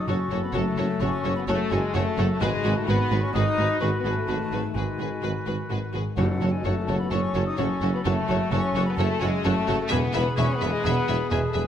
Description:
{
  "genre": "cinematic, heroic adventure film score",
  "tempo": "128 BPM",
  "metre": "4/4",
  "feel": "straight",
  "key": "F# dorian",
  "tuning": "A4 = 440 Hz",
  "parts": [
    { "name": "hollow concert flute", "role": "second line", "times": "0.0-11.7 s", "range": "F#5 to D#6", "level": "-35 LUFS", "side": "left 3 dB", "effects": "none" },
    { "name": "warm clarinet", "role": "second line", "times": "0.0-11.7 s", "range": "F#4 to G#4", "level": "-36 LUFS", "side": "left 3 dB", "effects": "none" },
    { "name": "warm oboe", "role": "second line", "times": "0.0-11.7 s", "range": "A4 to B4", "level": "-37 LUFS", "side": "right 1 dB", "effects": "none" },
    { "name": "mellow French horn section", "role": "sustained chords", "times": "0.0-11.7 s", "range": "F#3 to D#4", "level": "-29 LUFS", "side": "left 4 dB", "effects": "none" },
    { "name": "concert harp", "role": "arpeggios", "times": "0.0-11.7 s", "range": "E2 to E5", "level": "-35 LUFS", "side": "left 10 dB", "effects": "none" },
    { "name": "warm symphonic violin section", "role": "melody", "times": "0.1-11.6 s", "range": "B4 to E5", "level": "-34 LUFS", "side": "left 3 dB", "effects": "none" },
    { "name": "rich symphonic violin section", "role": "second line", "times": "0.1-11.6 s", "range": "G#4 to B4", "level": "-38 LUFS", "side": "left 2 dB", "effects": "none" },
    { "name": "warm symphonic viola section", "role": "accompaniment", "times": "0.1-11.6 s", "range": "F#4 to G#4", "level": "-35 LUFS", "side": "right 1 dB", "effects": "none" },
    { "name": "mellow tuba", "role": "bass", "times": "0.1-11.6 s", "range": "E1 to G#1", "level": "-31 LUFS", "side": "right 4 dB", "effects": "none" },
    { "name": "warm symphonic cello section", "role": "bass", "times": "0.1-11.6 s", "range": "E2 to G#2", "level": "-29 LUFS", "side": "right 1 dB", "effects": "none" },
    { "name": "warm symphonic double bass section", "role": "bass", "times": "0.1-11.6 s", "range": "E1 to G#1", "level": "-30 LUFS", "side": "right 2 dB", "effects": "none" },
    { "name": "timpani", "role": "percussion", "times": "6.2-6.8 s", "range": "F#2", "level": "-32 LUFS", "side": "left 1 dB", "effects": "none" }
  ],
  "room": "moderate recital hall reverb, RT60 1.4 s",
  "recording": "none",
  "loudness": "-22 LUFS",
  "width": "side -9 dB against mid",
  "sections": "0.0-11.7 A section",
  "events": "none",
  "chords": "0.0 F#m; 2.4 G#m7; 6.2 F#m; 9.9 E"
}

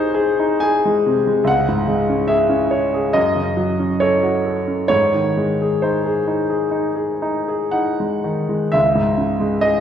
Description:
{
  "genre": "classical, romantic character piece for solo piano",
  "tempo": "56-72 BPM",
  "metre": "4/4",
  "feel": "rubato",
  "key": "unclear",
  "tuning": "A4 = 439 Hz",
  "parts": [
    { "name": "clear concert grand piano", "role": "solo", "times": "0.0-9.8 s", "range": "B#1 to G#5", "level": "-16 LUFS", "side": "equal", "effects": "none" }
  ],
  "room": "wet concert hall reverb, RT60 2.1 s",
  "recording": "heard from further back in the room",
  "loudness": "-16 LUFS",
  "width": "side -9 dB against mid",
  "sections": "0.0-9.8 A section",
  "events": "none",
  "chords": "0.0 G#/B#; 1.5 C#m; 3.2 F#m; 4.9 G#; 8.7 C#m"
}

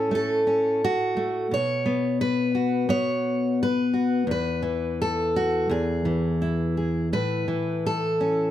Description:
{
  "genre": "folk, solo fingerstyle acoustic guitar",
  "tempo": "86 BPM",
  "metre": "4/4",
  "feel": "rubato",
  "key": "unclear",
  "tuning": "A4 = 440 Hz",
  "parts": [
    { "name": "fingerpicked steel-string acoustic guitar", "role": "solo", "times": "0.0-8.5 s", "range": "E2 to C#5", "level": "-22 LUFS", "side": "left 1 dB", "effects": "none" }
  ],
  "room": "light reverb",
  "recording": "close, detailed microphones",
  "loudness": "-22 LUFS",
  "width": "side -12 dB against mid",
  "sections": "0.0-8.5 A section",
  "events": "none",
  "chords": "0.0 F#m/A; 1.5 B5; 4.3 N.C.; 5.7 E; 7.1 A"
}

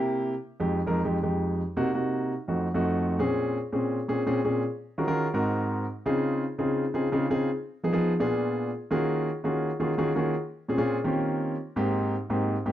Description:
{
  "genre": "jazz",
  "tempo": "168 BPM",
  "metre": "4/4",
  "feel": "straight",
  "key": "F minor, Bb minor from 3.2 s",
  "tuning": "A4 = 440 Hz",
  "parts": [
    { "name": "dark grand piano", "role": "solo", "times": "0.0-12.7 s", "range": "F2 to Bb4", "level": "-25 LUFS", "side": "equal", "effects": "none" }
  ],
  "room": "moderate studio reverb, RT60 0.7 s",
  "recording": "dark, warm production",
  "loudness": "-25 LUFS",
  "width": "side -12 dB against mid",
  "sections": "0.0-3.2 A section; 3.2-12.7 B section",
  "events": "none",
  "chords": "0.3 Fm7; 1.8 Cm7b5; 2.5 F7b9; 3.2 Bbm7; 4.6 Ebm11; 5.3 Ab9; 6.0 Dbmaj9; 7.5 Fm7b5; 8.2 Bb7b9; 8.9 Ebm11; 10.3 Bbm9; 11.0 Eb13; 11.8 Abmaj9"
}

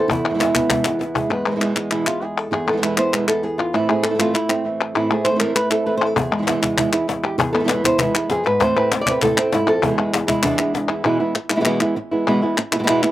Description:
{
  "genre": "flamenco",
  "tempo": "197 BPM",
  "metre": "4/4",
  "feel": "straight",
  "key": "E major",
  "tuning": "A4 = 439 Hz",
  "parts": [
    { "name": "flamenco guitar", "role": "melody", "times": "0.0-13.1 s", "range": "E2 to D5", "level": "-19 LUFS", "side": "equal", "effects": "slapback echo" },
    { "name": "flamenco guitar", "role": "stabs", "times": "0.0-13.1 s", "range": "E2 to E4", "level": "-24 LUFS", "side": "right 4 dB", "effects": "slapback echo" },
    { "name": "cajon", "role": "percussion", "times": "0.1-1.2, 6.2-10.9 s", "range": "none", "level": "-26 LUFS", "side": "left 4 dB", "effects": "slapback echo" },
    { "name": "palmas hand claps", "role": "percussion", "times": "0.1-13.1 s", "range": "none", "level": "-22 LUFS", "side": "left 4 dB", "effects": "none" }
  ],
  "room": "little or no reverb",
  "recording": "recorded outdoors, with no room sound",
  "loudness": "-17 LUFS",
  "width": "side -14 dB against mid",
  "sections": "0.0-1.3 A section; 1.3-11.0 B section; 11.0-13.1 C section",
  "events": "drum fill 0.9-1.3; nylon-string guitar solo 1.3-11.0",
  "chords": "0.1 E; 3.7 Am; 6.2 E; 8.6 Am; 9.8 E"
}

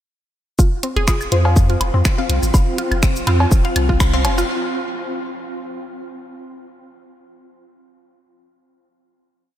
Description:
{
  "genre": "minimal techno",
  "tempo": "123 BPM",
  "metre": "4/4",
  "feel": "swing 54% on 16ths",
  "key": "unclear",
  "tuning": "A4 = 440 Hz",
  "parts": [
    { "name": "mallet-like synth pluck", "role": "riff", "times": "0.6-4.4 s", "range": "C4 to F5", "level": "-27 LUFS", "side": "equal", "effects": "chorus, sidechain pumping, diffuse ambient delay" },
    { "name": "electronic kick drum", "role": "drums", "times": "0.6-4.1 s", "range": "none", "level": "-15 LUFS", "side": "equal", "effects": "none" },
    { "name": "house drum kit", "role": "drums", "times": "0.6-4.5 s", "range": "cabasa, finger snaps, hi-hat", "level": "-26 LUFS", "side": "equal", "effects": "none" },
    { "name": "granular cloud pad", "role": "texture", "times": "1.6-4.5 s", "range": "F4 to C6", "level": "-29 LUFS", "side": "equal", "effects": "built-in reverb, sidechain pumping" },
    { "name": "swarming drone", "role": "texture", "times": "1.5-4.5 s", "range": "C4", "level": "-30 LUFS", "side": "equal", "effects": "built-in reverb, ensemble chorus, sidechain pumping" },
    { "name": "hollow square pluck", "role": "melody", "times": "1.0-1.2 s", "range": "Ab4", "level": "-28 LUFS", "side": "right 1 dB", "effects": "chorus, ping-pong delay" },
    { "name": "punchy sub bass", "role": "bass", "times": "1.0-4.4 s", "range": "Eb1 to F2", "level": "-18 LUFS", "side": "equal", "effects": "sidechain pumping" },
    { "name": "woodblock and cowbell", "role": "percussion", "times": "1.1-4.4 s", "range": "none", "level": "-27 LUFS", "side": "equal", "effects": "ping-pong delay" },
    { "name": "filtered dub chord stab", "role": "stabs", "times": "1.3-4.2 s", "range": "C4 to F5", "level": "-27 LUFS", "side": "left 2 dB", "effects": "phaser, ping-pong delay" }
  ],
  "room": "moderate cathedral reverb, RT60 4.7 s",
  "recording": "dreamy mix soaked in reverb",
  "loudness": "-15 LUFS",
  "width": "side -12 dB against mid",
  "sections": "0.6-4.5 build",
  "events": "build-up 0.6-4.5; filter sweep on synth arpeggio sound 0.6-4.5",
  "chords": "0.6 F5"
}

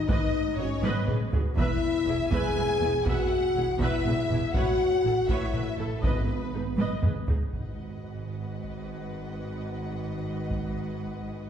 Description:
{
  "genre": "cinematic, epic orchestral film score",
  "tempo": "81 BPM (dotted quarters)",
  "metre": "6/8",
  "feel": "straight",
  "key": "G# phrygian",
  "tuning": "A4 = 442 Hz",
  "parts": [
    { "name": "warm symphonic violin section", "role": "melody", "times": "0.0-11.5 s", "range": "A4 to G#5", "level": "-39 LUFS", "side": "left 3 dB", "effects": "none" },
    { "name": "warm symphonic violin section", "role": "second line", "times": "0.0-11.5 s", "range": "A4 to G#5", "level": "-38 LUFS", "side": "left 2 dB", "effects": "none" },
    { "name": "mellow French horn section", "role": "sustained chords", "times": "0.0-11.5 s", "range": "A3 to G#4", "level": "-30 LUFS", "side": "left 3 dB", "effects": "none" },
    { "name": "clear symphonic viola section", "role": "accompaniment", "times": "0.1-11.5 s", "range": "D#4 to E5", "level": "-37 LUFS", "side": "right 1 dB", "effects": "none" },
    { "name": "dark chamber double bass section", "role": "bass", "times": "0.1-11.5 s", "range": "E1 to A1", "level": "-34 LUFS", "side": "right 3 dB", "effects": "none" },
    { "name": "warm symphonic cello section", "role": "bass", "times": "0.1-11.5 s", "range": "E2 to A2", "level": "-35 LUFS", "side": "right 3 dB", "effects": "none" },
    { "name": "solo taiko drums", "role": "drums", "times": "0.1-11.5 s", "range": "none", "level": "-30 LUFS", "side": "equal", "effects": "none" },
    { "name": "timpani", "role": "percussion", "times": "6.0-8.2 s", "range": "G#2", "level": "-37 LUFS", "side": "equal", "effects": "none" }
  ],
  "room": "wet concert hall reverb, RT60 1.9 s",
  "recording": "heard from further back in the room",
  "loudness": "-25 LUFS",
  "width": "side -8 dB against mid",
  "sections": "0.0-7.5 A section; 7.5-11.5 B section",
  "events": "drum fill 0.8-1.6, 6.8-7.5",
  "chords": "0.0 G#m; 1.6 E; 4.6 Aadd9; 6.0 G#m; 7.5 G#m7"
}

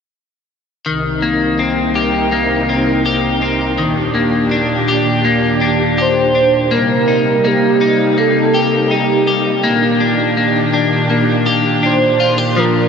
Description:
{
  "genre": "dream pop",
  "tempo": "82 BPM",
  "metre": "4/4",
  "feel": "straight",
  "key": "C minor",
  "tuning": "A4 = 443 Hz",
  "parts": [
    { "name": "string machine, violas", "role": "sustained chords", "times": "0.9-12.9 s", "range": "C2 to Bb4", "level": "-16 LUFS", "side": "right 1 dB", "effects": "ensemble chorus" },
    { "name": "electric guitar at the edge of break-up", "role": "arpeggios", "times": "0.9-12.9 s", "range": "Eb3 to G4", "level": "-15 LUFS", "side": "left 3 dB", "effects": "analog chorus, ping-pong delay" },
    { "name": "warm velvety synth lead", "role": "melody", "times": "6.0-12.9 s", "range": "G4 to C5", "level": "-16 LUFS", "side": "right 2 dB", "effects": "chorus, ping-pong delay" }
  ],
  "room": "wet huge ambient reverb, RT60 4.1 s",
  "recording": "none",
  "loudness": "-12 LUFS",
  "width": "side -6 dB against mid",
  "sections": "0.9-6.7 A section; 6.7-12.9 B section",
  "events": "none",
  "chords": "0.9 Cm7; 3.8 Ebmaj7; 6.7 Cm7; 9.6 Ebmaj7"
}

